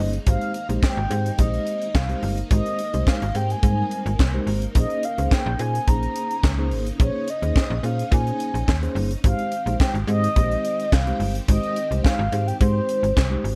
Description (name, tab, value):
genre	early-eighties boogie funk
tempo	107 BPM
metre	4/4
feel	straight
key	unclear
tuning	A4 = 439 Hz
part	mellow horn-like synth lead	melody	0.0-13.4 s	C5 to Bb5	-29 LUFS	equal	chorus, slapback echo
part	mellow tine electric piano	accompaniment	0.0-13.6 s	G3 to C5	-31 LUFS	equal	none
part	string machine, violins	sustained chords	0.0-13.6 s	Db3 to G4	-39 LUFS	equal	ensemble chorus
part	slap-like FM bass	bass	0.0-13.6 s	G1 to Bb2	-26 LUFS	equal	none
part	tight funk drum kit	drums	0.1-13.6 s	handclaps, hi-hat, kick drum, snare drum	-23 LUFS	equal	none
room	light reverb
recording	none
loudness	-22 LUFS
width	mono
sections	0.0-13.6 A section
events	none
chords	0.3 Abmaj7; 4.8 Bbm11; 9.2 Abmaj7